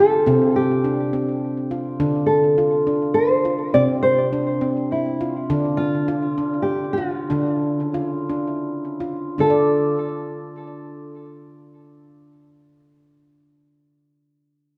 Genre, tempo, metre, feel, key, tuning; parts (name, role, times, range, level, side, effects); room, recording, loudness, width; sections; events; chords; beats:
world meditative, meditative tuned percussion; 77-103 BPM; 3/4; straight; D minor pentatonic; A4 = 438 Hz
nylon-string guitar; melody; 0.0-12.8 s; E4 to D5; -22 LUFS; equal; delay
handpan; arpeggios; 0.0-12.9 s; C3 to D5; -24 LUFS; equal; delay
wet echo chamber reverb, RT60 2.2 s; -21 LUFS; mono
0.0-9.4 A section; 9.4-14.0 B section
slowing down 5.5-9.4
0.3 C5; 2.0 Dm; 3.8 Cadd9; 5.5 Dm
| 0.26 0.84 1.43 | 2.01 2.59 3.17 | 3.75 4.33 4.91 | 5.50 6.08 6.68 | 7.30 7.95 8.64 | 9.39 10.16 10.94 | 11.71 12.49